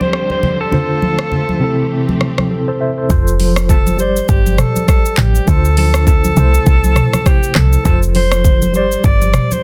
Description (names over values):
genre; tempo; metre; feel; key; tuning
afrobeats; 101 BPM; 4/4; swing 58% on 16ths; C major; A4 = 440 Hz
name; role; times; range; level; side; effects
breathy alto saxophone; melody; 0.0-9.6 s; G4 to D5; -21 LUFS; equal; low-pass filter
tine electric piano; accompaniment; 0.0-9.6 s; C3 to E5; -22 LUFS; equal; medium tremolo, low-pass filter
warm studio string section; sustained chords; 0.0-3.1 s; D3 to C5; -27 LUFS; equal; low-pass filter
congas; percussion; 0.0-9.6 s; none; -23 LUFS; equal; none
afro-pop drum kit; drums; 0.1-9.6 s; handclaps, hi-hat, kick drum, rim click, shaker, toms; -16 LUFS; equal; soft clipping on snare
woody log drum bass; bass; 3.1-9.4 s; F1 to D2; -16 LUFS; equal; none
room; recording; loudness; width
little or no reverb; dense, heavily limited modern master; -13 LUFS; mono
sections
0.0-3.1 A section; 3.1-9.6 B section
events
filter sweep 0.0-3.1; silent gap 2.5-3.1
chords
0.0 Gsus4; 0.7 Dm7; 1.6 C6; 3.1 F; 4.0 Gsus4; 5.5 Dm7; 6.4 C6; 7.9 F; 8.7 Gsus4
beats
0.13 | 0.72 1.32 1.91 2.51 | 3.10 3.69 4.29 4.88 | 5.48 6.07 6.67 7.26 | 7.85 8.45 9.04